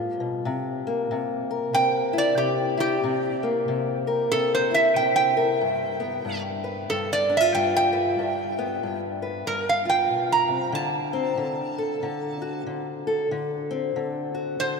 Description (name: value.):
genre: acoustic country blues, solo or duo.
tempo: 93 BPM.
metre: 4/4.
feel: swing 60% on 8ths.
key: G mixolydian.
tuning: A4 = 440 Hz.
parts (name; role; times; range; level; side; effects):
fingerpicked old ladder-braced acoustic guitar; accompaniment; 0.0-14.8 s; G2 to B4; -26 LUFS; left 3 dB; none.
metal-body resonator slide guitar; melody; 1.7-14.8 s; G4 to Bb5; -24 LUFS; right 2 dB; none.
room: wet cathedral reverb, RT60 6.7 s.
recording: in a vast, echoing space.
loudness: -22 LUFS.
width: side -4 dB against mid.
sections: 0.0-14.8 A section.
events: none.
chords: 0.5 C7; 5.6 G7; 10.7 D7.